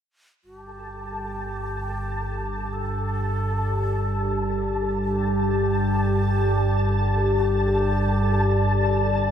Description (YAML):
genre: dark ambient drone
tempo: 52 BPM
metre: 4/4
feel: straight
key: unclear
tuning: A4 = 440 Hz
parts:
  - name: breathy bright long shakuhachi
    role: melody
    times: 0.4-9.0 s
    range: G4 to A4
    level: -35 LUFS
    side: equal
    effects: analog delay
  - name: dark analog pad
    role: sustained chords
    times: 1.1-9.3 s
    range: G3 to D5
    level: -26 LUFS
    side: left 1 dB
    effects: chorus
  - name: analog drone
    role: drone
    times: 1.0-9.3 s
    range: G1 to G2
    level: -24 LUFS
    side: equal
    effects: lush chorus
  - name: flickering grainy texture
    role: texture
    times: 0.6-9.3 s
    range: A5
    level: -29 LUFS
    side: left 1 dB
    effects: built-in reverb, ensemble chorus
room: wet huge ambient reverb, RT60 8.3 s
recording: dreamy mix soaked in reverb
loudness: -21 LUFS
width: side -9 dB against mid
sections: 0.4-9.3 A section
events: none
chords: 0.4 G5